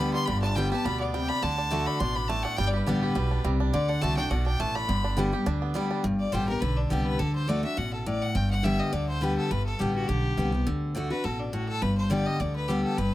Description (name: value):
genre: bluegrass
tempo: 208 BPM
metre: 4/4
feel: swing 54% on 8ths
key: G major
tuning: A4 = 440 Hz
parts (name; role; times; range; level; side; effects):
- bluegrass banjo; melody; 0.0-6.0 s; D3 to G4; -34 LUFS; right 5 dB; none
- clear fiddle; melody; 0.0-13.1 s; D4 to C6; -31 LUFS; left 2 dB; none
- picked steel-string acoustic guitar; accompaniment; 0.0-13.1 s; G2 to G4; -28 LUFS; left 1 dB; none
- upright bass; bass; 0.0-13.1 s; G1 to D2; -30 LUFS; equal; none
room: light reverb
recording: none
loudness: -24 LUFS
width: side -15 dB against mid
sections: 0.0-6.0 A section; 6.0-13.1 B section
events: fiddle solo 0.0-6.0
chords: 0.0 G; 1.4 D; 2.6 G; 3.7 D; 4.9 G; 7.2 D; 8.4 G; 10.7 D; 11.8 G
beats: | 0.28 0.56 0.85 1.14 | 1.43 1.72 2.00 2.29 | 2.58 2.87 3.16 3.44 | 3.73 4.02 4.31 4.60 | 4.89 5.17 5.46 5.75 | 6.04 6.33 6.62 6.91 | 7.20 7.49 7.78 8.06 | 8.35 8.64 8.93 9.22 | 9.51 9.80 10.09 10.38 | 10.67 10.96 11.24 11.53 | 11.82 12.11 12.40 12.69 | 12.98